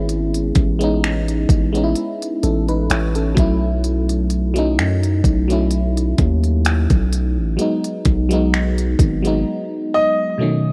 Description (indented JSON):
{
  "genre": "contemporary R&B",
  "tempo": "64 BPM",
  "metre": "4/4",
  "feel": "swing 54% on 16ths",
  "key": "unclear",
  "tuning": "A4 = 441 Hz",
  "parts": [
    { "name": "FM electric piano", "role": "accompaniment", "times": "0.0-10.7 s", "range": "B2 to C#5", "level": "-23 LUFS", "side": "equal", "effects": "chorus, cassette tape" },
    { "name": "long sustained 808-style bass", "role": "bass", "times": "0.0-9.4 s", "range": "G#1 to F#2", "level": "-21 LUFS", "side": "equal", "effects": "none" },
    { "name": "trap drum kit", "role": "drums", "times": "0.1-9.4 s", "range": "finger snaps, hi-hat, kick drum", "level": "-21 LUFS", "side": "equal", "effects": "overdrive, cassette tape" },
    { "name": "bright grand piano", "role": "melody", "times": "9.9-10.7 s", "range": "D#5", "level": "-20 LUFS", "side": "equal", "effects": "cassette tape" }
  ],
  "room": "little or no reverb",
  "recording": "home recording on cassette",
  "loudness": "-18 LUFS",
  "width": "mono",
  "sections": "0.0-10.7 A section",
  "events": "none",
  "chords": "0.0 Amaj7; 3.4 B7sus4; 7.6 G#m7",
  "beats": "| 0.09 1.02 1.96 2.90 | 3.84 4.78 5.71 6.65 | 7.59 8.53 9.46 10.40"
}